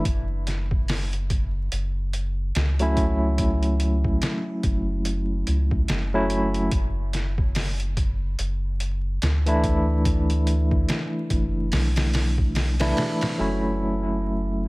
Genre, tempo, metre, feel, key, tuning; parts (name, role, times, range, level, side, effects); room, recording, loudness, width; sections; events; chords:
trip hop; 72 BPM; 4/4; swing 59% on 16ths; F# minor; A4 = 440 Hz
barky tine electric piano; accompaniment; 0.0-14.7 s; E3 to E4; -25 LUFS; equal; tremolo, tape echo
soft dub sub bass; bass; 0.1-14.7 s; F#1 to D2; -24 LUFS; equal
trip hop sampler-style drum kit; drums; 0.1-13.4 s; hi-hat, kick drum, snare drum; -26 LUFS; equal; small room ambience
digital ambience; vinyl crackle; -21 LUFS; side -24 dB against mid
0.0-13.4 A section; 13.4-14.7 B section
0.1 F#m7; 6.7 Asus4/F#; 13.4 F#m7